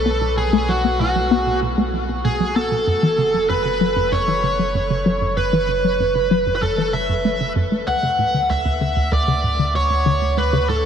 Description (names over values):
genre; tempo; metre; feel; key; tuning
ambient, sequencer-driven space music; 96 BPM; 4/4; straight; F# minor; A4 = 441 Hz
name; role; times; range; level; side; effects
smooth overdriven lead guitar; melody; 0.0-10.9 s; F#4 to F#5; -19 LUFS; right 1 dB; ping-pong delay
warm sub bass; bass; 0.0-10.9 s; F#1 to D2; -25 LUFS; equal; none
hollow square pluck; riff; 0.1-10.8 s; D2 to B3; -21 LUFS; left 1 dB; chorus, phaser, ping-pong delay
room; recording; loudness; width
wet huge ambient reverb, RT60 8.9 s; none; -16 LUFS; side -8 dB against mid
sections
0.0-10.9 A section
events
filter sweep on synth arpeggio sound 0.0-10.9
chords
0.0 B7(no3); 2.9 F#5; 7.9 Dmaj7